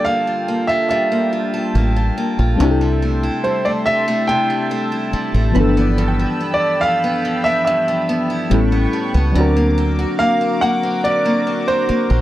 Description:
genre	contemporary R&B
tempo	71 BPM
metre	4/4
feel	straight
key	unclear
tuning	A4 = 439 Hz
part	warm concert grand piano	melody	0.0-12.2 s	C5 to G5	-18 LUFS	right 1 dB	none
part	mellow FM electric piano	accompaniment	0.0-12.2 s	E3 to A#4	-21 LUFS	left 2 dB	chorus, phaser
part	chorused pulse-width pad	sustained chords	0.0-12.2 s	F4 to E6	-26 LUFS	right 1 dB	none
part	picked steel-string acoustic guitar	arpeggios	0.0-12.2 s	G2 to A4	-22 LUFS	equal	none
part	glassy wavetable pluck	texture	0.0-7.3 s	B4 to G5	-32 LUFS	right 2 dB	chorus, analog delay
part	deep dub fingered electric bass	bass	1.8-12.2 s	G1 to D2	-16 LUFS	equal	none
room	small room ambience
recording	dry, gritty hardware recording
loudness	-15 LUFS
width	side -14 dB against mid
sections	0.0-12.2 A section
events	none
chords	0.0 Gm9; 2.6 C6; 5.6 G13; 8.5 A9; 9.4 Daug7

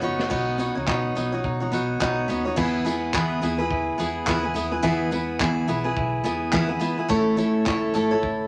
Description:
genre	acoustic pop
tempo	106 BPM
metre	4/4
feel	swing 60% on 16ths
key	E major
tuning	A4 = 438 Hz
part	picked steel-string acoustic guitar	accompaniment	0.0-8.5 s	E3 to C#5	-25 LUFS	equal	none
part	direct-recorded clean electric guitar	arpeggios	0.0-8.5 s	F#3 to A4	-36 LUFS	equal	none
part	vintage muted fingered electric bass	bass	0.0-8.4 s	F#1 to B2	-36 LUFS	equal	none
part	modern studio drum kit	drums	0.2-8.4 s	crash cymbal, handclaps, kick drum, snare drum, tambourine	-33 LUFS	equal	none
room	wet club reverb, RT60 0.6 s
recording	none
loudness	-24 LUFS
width	mono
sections	0.3-2.6 A section; 2.6-8.5 B section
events	drum fill 0.0-0.3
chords	0.3 Badd9; 2.6 E; 7.1 A

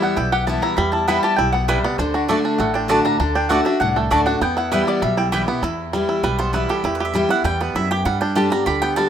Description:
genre	bluegrass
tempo	198 BPM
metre	4/4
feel	straight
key	E minor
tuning	A4 = 442 Hz
part	mandolin	melody	0.0-5.3 s	F#4 to B5	-22 LUFS	left 2 dB	none
part	picked steel-string acoustic guitar	accompaniment	0.0-9.1 s	E2 to G4	-22 LUFS	left 2 dB	none
part	bluegrass banjo	arpeggios	0.0-9.1 s	G3 to G4	-23 LUFS	right 4 dB	none
part	upright bass	bass	0.2-9.1 s	A1 to G2	-25 LUFS	left 1 dB	none
part	mandolin	stabs	1.1-9.1 s	A3 to B5	-23 LUFS	right 2 dB	none
room	light reverb, small room ambience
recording	rough home demo mix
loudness	-17 LUFS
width	side -9 dB against mid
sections	0.0-5.6 A section; 5.6-9.1 B section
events	mandolin solo 5.6-9.1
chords	0.0 Em; 2.0 D; 4.4 Em; 8.1 G

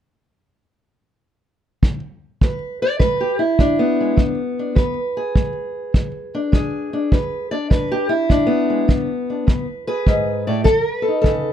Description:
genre	acoustic country blues, solo or duo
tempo	102 BPM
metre	4/4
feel	swing 68% on 8ths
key	E mixolydian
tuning	A4 = 440 Hz
part	kick drum	drums	1.8-11.4 s	none	-17 LUFS	equal	none
part	fingerpicked steel-string acoustic guitar	melody	2.4-11.5 s	E2 to D5	-19 LUFS	equal	none
room	little or no reverb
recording	close, detailed microphones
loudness	-17 LUFS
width	side -10 dB against mid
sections	0.1-2.4 A section; 2.4-11.5 B section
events	none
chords	0.1 N.C.; 2.4 E7; 10.7 B7

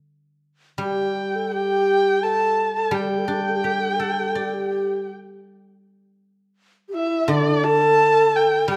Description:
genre	chinese traditional, Chinese chamber ensemble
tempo	84 BPM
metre	4/4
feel	uneven beats, rubato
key	unclear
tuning	A4 = 442 Hz
part	dark erhu	melody	0.8-8.8 s	D5 to A5	-25 LUFS	equal	none
part	breathy mellow low xiao	second line	0.8-8.8 s	D4 to A4	-24 LUFS	equal	none
part	guzheng	accompaniment	0.8-8.8 s	D3 to D5	-29 LUFS	equal	none
room	wet recital hall reverb, RT60 1.5 s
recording	none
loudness	-21 LUFS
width	mono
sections	0.0-5.8 A section; 5.8-8.8 B section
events	none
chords	none

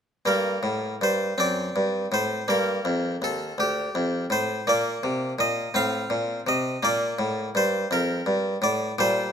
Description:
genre	classical, baroque-style suite movement for harpsichord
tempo	55 BPM (dotted quarters)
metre	6/8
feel	rubato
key	G minor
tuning	A4 = 436 Hz
part	harpsichord	solo	0.3-9.3 s	D2 to F5	-22 LUFS	equal	none
room	moderate large studio reverb, RT60 1.4 s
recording	none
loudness	-23 LUFS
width	side -8 dB against mid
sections	0.3-9.3 A section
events	none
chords	0.3 Gm; 1.4 D7/F#; 2.5 Gm; 4.7 Bb; 5.7 F/A; 6.8 Bb

